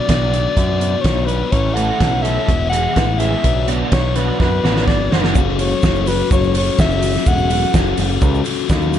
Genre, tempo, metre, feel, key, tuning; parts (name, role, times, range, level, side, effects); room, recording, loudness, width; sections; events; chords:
indie rock; 125 BPM; 4/4; straight; A4 = 436 Hz
clear soprano saxophone; melody; 0.0-7.7 s; B4 to F#5; -21 LUFS; left 1 dB; tape echo
biting overdriven guitar; riff; 0.0-9.0 s; A2 to A4; -21 LUFS; left 9 dB
growling picked electric bass; bass; 0.1-9.0 s; E1 to F#2; -19 LUFS; right 1 dB; overdrive
loose indie drum kit; drums; 0.1-9.0 s; hi-hat, kick drum, snare drum; -18 LUFS; equal; tape echo
crunchy overdriven guitar; riff; 1.8-5.4 s; E3 to A4; -24 LUFS; right 10 dB; ensemble chorus, tape echo
tube shaker; percussion; 5.4-9.0 s; -39 LUFS; right 14 dB
small room ambience; echo-heavy mix, nothing above 10.5 kHz; -14 LUFS; side -10 dB against mid
0.0-5.4 A section; 5.4-9.0 B section
drum fill 4.4-5.4
0.0 Bm; 1.5 A; 2.5 E; 3.4 Bm; 5.4 F#m